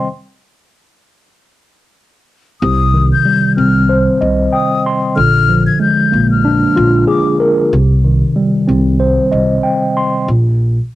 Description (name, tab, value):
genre	hip hop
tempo	94 BPM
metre	4/4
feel	swing 56% on 16ths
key	C minor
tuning	A4 = 440 Hz
part	mellow tine electric piano	accompaniment	0.0-10.3 s	C3 to C6	-12 LUFS	equal	medium stereo tremolo, cassette tape
part	breathy concert flute	melody	2.6-7.4 s	D6 to Ab6	-16 LUFS	left 7 dB	none
part	upright bass	bass	2.6-10.8 s	Bb1 to C2	-14 LUFS	equal	none
room	light reverb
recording	home recording on cassette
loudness	-10 LUFS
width	side -15 dB against mid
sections	0.0-2.6 A section; 2.6-10.9 B section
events	stop 0.1-2.6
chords	0.1 N.C.; 2.6 Cm; 5.2 Bb7; 7.7 Cm; 10.3 N.C.